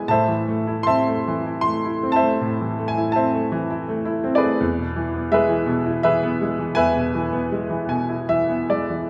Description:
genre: classical, lyrical solo piano.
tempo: 74-87 BPM.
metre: 3/4.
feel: rubato.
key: unclear.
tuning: A4 = 441 Hz.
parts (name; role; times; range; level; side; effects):
clear grand piano; solo; 0.0-9.1 s; E2 to C6; -21 LUFS; equal; none.
room: moderate recital hall reverb, RT60 1.4 s.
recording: none.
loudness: -21 LUFS.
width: mono.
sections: 0.0-9.1 A section.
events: grand piano fill 7.5-9.1.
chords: 0.1 Am; 4.6 E.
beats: | 0.10 0.88 1.66 | 2.41 3.15 3.88 | 4.61 5.32 6.04 | 6.77 7.51 8.30 | 9.10.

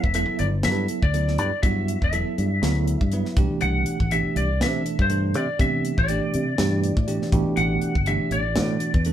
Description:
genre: electric jazz fusion.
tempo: 121 BPM.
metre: 4/4.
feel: swing 55% on 16ths.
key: unclear.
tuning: A4 = 440 Hz.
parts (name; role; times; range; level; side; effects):
lightly driven lead guitar; melody; 0.0-9.0 s; C5 to F#5; -27 LUFS; left 2 dB; none.
fingered electric bass; bass; 0.0-9.1 s; E1 to C3; -24 LUFS; equal; none.
tight funk drum kit; drums; 0.0-9.1 s; hi-hat, kick drum, snare drum; -25 LUFS; equal; none.
bell-like tine electric piano; accompaniment; 0.1-9.1 s; B2 to B4; -26 LUFS; right 3 dB; fast stereo tremolo.
room: moderate studio reverb, RT60 0.7 s.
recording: band playing live in one room.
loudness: -20 LUFS.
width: side -11 dB against mid.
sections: 0.0-9.1 A section.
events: none.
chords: 0.0 G6; 3.4 C69; 7.3 A7sus4.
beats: 0.15 0.65 1.14 | 1.64 2.13 2.63 3.12 | 3.62 4.11 4.61 5.10 | 5.60 6.09 6.59 7.08 | 7.57 8.07 8.56 9.05.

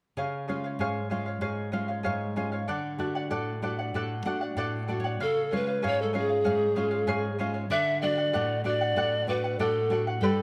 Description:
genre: andean folk.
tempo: 96 BPM.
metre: 2/4.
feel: straight.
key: unclear.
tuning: A4 = 441 Hz.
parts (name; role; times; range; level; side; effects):
charango; accompaniment; 0.2-10.4 s; G4 to B5; -35 LUFS; equal; none.
nylon-string guitar; accompaniment; 0.2-10.4 s; G2 to F#5; -34 LUFS; equal; none.
breathy polished pan flute; melody; 5.2-10.4 s; G#4 to E5; -29 LUFS; equal; none.
room: light reverb.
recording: close, detailed microphones.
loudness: -29 LUFS.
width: mono.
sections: 0.2-5.2 A section; 5.2-10.4 B section.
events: nylon-string guitar fill 4.0-5.2.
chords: 0.2 C#; 2.7 D; 5.2 C#; 7.7 D.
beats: | 0.17 0.80 | 1.43 2.06 | 2.69 3.32 | 3.95 4.58 | 5.21 5.83 | 6.46 7.09 | 7.71 8.34 | 8.97 9.59 | 10.22.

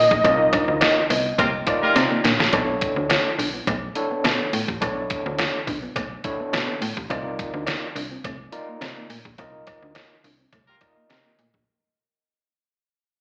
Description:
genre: early-eighties boogie funk.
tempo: 105 BPM.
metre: 4/4.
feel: straight.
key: unclear.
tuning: A4 = 440 Hz.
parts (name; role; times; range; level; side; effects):
fat analog lead; melody; 0.0-1.9 s; Eb5; -23 LUFS; equal; slapback echo, tape echo.
clean electric guitar; riff; 0.0-11.5 s; A3 to D4; -35 LUFS; equal; analog chorus, slapback echo.
slap-like FM bass; bass; 0.0-11.6 s; A1 to C3; -30 LUFS; equal; none.
detuned 8-bit digital drum machine; drums; 0.1-11.7 s; hi-hat, kick drum, snare drum; -26 LUFS; equal; none.
overdriven tine electric piano; accompaniment; 0.2-11.4 s; D4 to Eb5; -30 LUFS; equal; fast tremolo, slapback echo.
cowbell; percussion; 0.2-11.2 s; none; -31 LUFS; equal; slapback echo.
clear horn section; second line; 1.4-2.2, 10.7-11.3 s; Bb3 to Bb4; -26 LUFS; equal; slapback echo.
room: light reverb, digital ambience.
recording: live gig heard through the venue's PA, club reverb, AM radio sound.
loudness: -22 LUFS.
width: mono.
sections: 0.0-2.5 A section; 2.5-11.7 B section.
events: drum fill 2.0-2.5; fade-out 2.5-11.7; band accent 9.4-11.7.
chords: 0.0 Cm11; 2.5 Bm11; 7.1 Cm11.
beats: | 0.24 0.82 1.39 1.96 | 2.53 3.10 3.67 4.25 | 4.82 5.39 5.96 6.53 | 7.10 7.67 8.24 8.82 | 9.39 9.96 10.53 11.10.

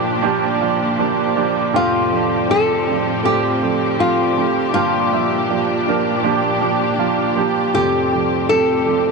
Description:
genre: pop.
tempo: 80 BPM.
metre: 4/4.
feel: straight.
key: F major.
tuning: A4 = 440 Hz.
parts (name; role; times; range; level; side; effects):
nylon-string guitar; melody; 0.0-9.1 s; F4 to A4; -19 LUFS; left 3 dB; none.
warm grand piano; accompaniment; 0.0-9.1 s; F2 to E5; -19 LUFS; right 10 dB; none.
clear symphonic string section; sustained chords; 0.0-9.1 s; A2 to G4; -21 LUFS; left 2 dB; none.
fingerpicked plugged-in steel-string acoustic guitar; arpeggios; 0.0-9.1 s; G2 to A4; -26 LUFS; left 13 dB; tape echo.
room: moderate plate reverb, RT60 3.1 s.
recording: 1960s-style stereo with parts hard left and right.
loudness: -15 LUFS.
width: side -3 dB against mid.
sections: 0.0-9.1 A section.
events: none.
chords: 0.0 Gm7; 1.7 Fadd9; 4.7 Gm7; 7.7 Fadd9.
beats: 0.24 0.99 | 1.74 2.49 3.24 3.99 | 4.74 5.49 6.24 6.99 | 7.74 8.49.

